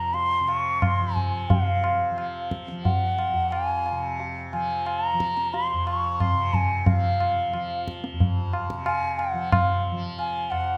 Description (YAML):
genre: indian classical, Hindustani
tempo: 90 BPM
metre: 4/4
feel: straight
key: F raga bhairavi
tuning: A4 = 441 Hz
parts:
  - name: bansuri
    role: melody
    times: 0.0-10.8 s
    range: F5 to Db6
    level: -28 LUFS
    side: equal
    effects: none
  - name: tanpura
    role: drone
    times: 0.0-10.8 s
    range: F2 to F3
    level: -34 LUFS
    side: equal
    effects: none
  - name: tabla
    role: percussion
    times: 0.1-10.8 s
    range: none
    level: -28 LUFS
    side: equal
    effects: none
room: moderate recital hall reverb, RT60 1.5 s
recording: none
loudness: -25 LUFS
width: mono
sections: 0.0-1.5 A section; 1.5-10.8 B section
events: speeding up 0.0-10.8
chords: none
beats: 0.14 0.81 | 1.49 2.17 2.85 3.52 | 4.19 4.86 5.53 6.20 | 6.87 7.54 8.20 8.87 | 9.53 10.19